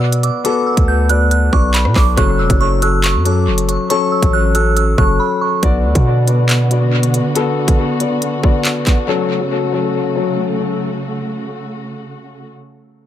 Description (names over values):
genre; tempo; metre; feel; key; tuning
hip hop, drill; 139 BPM; 4/4; half-time; F# minor; A4 = 436 Hz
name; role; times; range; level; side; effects
glassy synth bell; melody; 0.0-5.6 s; B5 to F#6; -21 LUFS; right 3 dB; chorus, phaser, low-pass filter, dub echo
dark concert grand piano; accompaniment; 0.0-10.8 s; F#3 to D5; -18 LUFS; left 5 dB; low-pass filter, dub echo
distorted 808-style bass; bass; 0.0-7.2 s; E1 to B2; -14 LUFS; right 1 dB; distortion
drill drum kit; drums; 0.1-9.0 s; handclaps, hi-hat, kick drum, rim click; -16 LUFS; equal; dub echo
delicate synth tine bell; second line; 0.4-5.6 s; C#6 to G6; -24 LUFS; right 4 dB; chorus, dub echo
muted studio string section; sustained chords; 5.6-12.5 s; C#3 to F#4; -22 LUFS; right 2 dB; none
room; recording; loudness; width
light reverb; echo-heavy mix; -12 LUFS; side -11 dB against mid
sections
0.0-5.6 A section; 5.6-12.5 B section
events
break 5.2-5.6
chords
0.0 Bm; 2.2 F#m; 5.6 Bm; 9.1 F#m